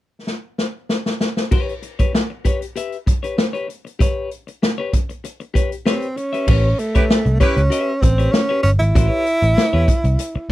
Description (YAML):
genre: funk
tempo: 97 BPM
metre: 4/4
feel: straight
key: A mixolydian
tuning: A4 = 440 Hz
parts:
  - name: swinging big-band drum kit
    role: drums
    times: 0.3-10.5 s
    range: crash cymbal, hi-hat, kick drum, snare drum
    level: -18 LUFS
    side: equal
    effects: none
  - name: clean electric guitar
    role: accompaniment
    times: 1.5-10.4 s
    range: G4 to E5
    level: -25 LUFS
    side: left 5 dB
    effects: none
  - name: breathy tenor saxophone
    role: melody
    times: 5.9-10.5 s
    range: A3 to E4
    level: -20 LUFS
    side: right 1 dB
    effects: none
  - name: vintage muted picked electric bass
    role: bass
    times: 6.5-10.5 s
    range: G1 to E2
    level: -16 LUFS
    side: equal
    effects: none
  - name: warm horn section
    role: second line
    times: 6.9-7.6 s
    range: E4 to B4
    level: -22 LUFS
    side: right 1 dB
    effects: none
room: light reverb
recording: none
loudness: -16 LUFS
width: side -16 dB against mid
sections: 0.0-1.5 A section; 1.5-6.5 B section; 6.5-10.5 C section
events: drum fill 0.3-1.5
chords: 0.0 N.C.; 1.5 Em6 (rootless); 6.5 A9